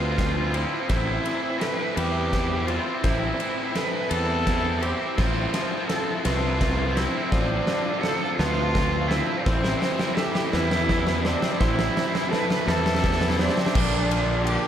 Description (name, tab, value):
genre	post-rock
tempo	56 BPM (dotted quarters)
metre	6/8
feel	straight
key	A minor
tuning	A4 = 440 Hz
part	rich cello	melody	0.0-14.7 s	C4 to B4	-28 LUFS	right 2 dB	diffuse ambient delay
part	mellow electric guitar	arpeggios	0.0-13.8 s	A4 to C5	-34 LUFS	right 3 dB	diffuse ambient delay
part	twangy electric guitar	arpeggios	0.0-14.7 s	A2 to F4	-34 LUFS	left 3 dB	wide subtle chorus, diffuse ambient delay
part	overdriven electric guitar	riff	0.0-14.7 s	Bb2 to F4	-28 LUFS	left 1 dB	spring reverb
part	fuzz fingered electric bass	bass	0.0-14.6 s	A1 to E2	-27 LUFS	equal	overdrive
part	big rock drum kit	drums	0.2-14.6 s	crash cymbal, kick drum, ride cymbal, snare drum	-27 LUFS	equal	none
room	moderate plate reverb, RT60 2.6 s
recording	dreamy mix soaked in reverb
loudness	-21 LUFS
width	side -9 dB against mid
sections	0.0-13.8 A section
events	build-up 0.0-13.8; drum fill 0.0-13.8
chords	0.0 G9sus4; 0.9 Am7; 5.2 Fmaj7/A; 7.3 Dm13/A; 9.5 Am7; 13.8 Bb